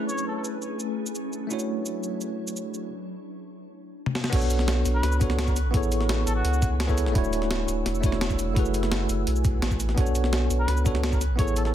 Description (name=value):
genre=liquid drum and bass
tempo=170 BPM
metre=4/4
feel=straight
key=unclear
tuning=A4 = 439 Hz
part: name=bell-like tine electric piano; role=accompaniment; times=0.0-11.7 s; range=A3 to C#5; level=-29 LUFS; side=equal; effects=fast stereo tremolo, ping-pong delay
part: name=glassy FM pad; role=sustained chords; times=0.0-11.7 s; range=F#3 to E6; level=-36 LUFS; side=left 1 dB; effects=ensemble chorus, built-in reverb, phaser, sidechain pumping
part: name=trumpet with cup mute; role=melody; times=0.1-0.4, 4.9-6.7, 10.6-11.7 s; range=F#4 to C#5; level=-34 LUFS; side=left 1 dB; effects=digital delay
part: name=breakbeat sampler-style drum kit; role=drums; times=0.1-11.7 s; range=crash cymbal, hi-hat, shaker, snare drum, toms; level=-31 LUFS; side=equal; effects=none
part: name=warm sub bass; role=bass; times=4.3-11.7 s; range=D1 to C#2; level=-25 LUFS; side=equal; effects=none
part: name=electronic kick drum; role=drums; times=4.3-11.5 s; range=none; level=-26 LUFS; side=equal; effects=none
room=little or no reverb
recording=none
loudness=-23 LUFS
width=side -11 dB against mid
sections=0.0-4.3 A section; 4.3-11.7 B section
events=filter sweep on drum 0.0-4.3; filter sweep on ambient pad 0.0-4.3; break 2.9-4.3; drum fill 4.1; drop 4.3-11.7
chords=0.0 Amaj9; 1.5 Dmaj9; 2.9 N.C.; 4.3 Bm9; 5.6 Amaj9; 7.2 Dmaj9; 8.6 F#m11; 10.0 Bm9; 11.2 Amaj9